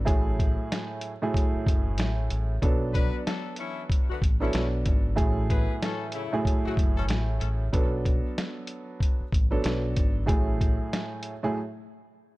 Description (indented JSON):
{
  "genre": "hip hop, boom-bap hip-hop",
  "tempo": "94 BPM",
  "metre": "4/4",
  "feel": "swing 60% on 16ths",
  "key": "B dorian",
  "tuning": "A4 = 438 Hz",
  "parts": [
    { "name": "dark upright piano", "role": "accompaniment", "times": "0.0-11.6 s", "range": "A2 to A4", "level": "-30 LUFS", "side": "right 2 dB", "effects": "cassette tape" },
    { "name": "deep dub fingered electric bass", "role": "bass", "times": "0.0-10.8 s", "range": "F#1 to B1", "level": "-29 LUFS", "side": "equal", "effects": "none" },
    { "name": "lo-fi sampler-style drum kit", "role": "drums", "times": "0.1-11.4 s", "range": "hi-hat, kick drum, snare drum", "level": "-26 LUFS", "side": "equal", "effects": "none" },
    { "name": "warm horn section", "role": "stabs", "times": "2.9-7.0 s", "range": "C#3 to B4", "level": "-36 LUFS", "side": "left 6 dB", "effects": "ping-pong delay" }
  ],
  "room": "little or no reverb",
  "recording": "dark, warm production",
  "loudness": "-24 LUFS",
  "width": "side -19 dB against mid",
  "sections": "0.0-12.4 A section",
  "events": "break 11.6-12.4",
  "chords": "0.1 F#m9/A; 2.6 Bm7; 5.2 F#m9/A; 7.7 Bm7; 10.3 F#m9/A"
}